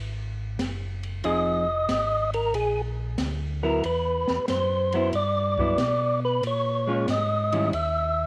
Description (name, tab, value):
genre	soul jazz organ trio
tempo	93 BPM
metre	4/4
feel	swing 69% on 8ths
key	unclear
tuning	A4 = 441 Hz
part	mellow tonewheel organ	bass	0.0-8.3 s	F1 to B2	-32 LUFS	equal	chorus vibrato, slow rotary speaker
part	open jazz drum kit	drums	0.6-7.9 s	hi-hat, kick drum, ride cymbal, snare drum	-37 LUFS	equal	cassette tape
part	percussive tonewheel organ	melody	1.2-8.3 s	Ab4 to Fb5	-27 LUFS	equal	slow rotary speaker
part	vintage hollow-body jazz guitar	accompaniment	1.2-7.7 s	Eb3 to Ab4	-32 LUFS	equal	cassette tape
room	light reverb, studio reverb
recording	home recording on cassette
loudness	-26 LUFS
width	mono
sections	0.0-8.3 A section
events	tonewheel organ solo 0.0-8.3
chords	0.0 Dbsus4 (rootless); 1.2 Fm7; 2.5 Bb; 3.8 Cmaj9#11; 6.4 Bbm7; 7.7 Dbmadd9 (rootless)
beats	0.60 | 1.25 1.90 2.55 3.19 | 3.84 4.49 5.14 5.79 | 6.44 7.08 7.74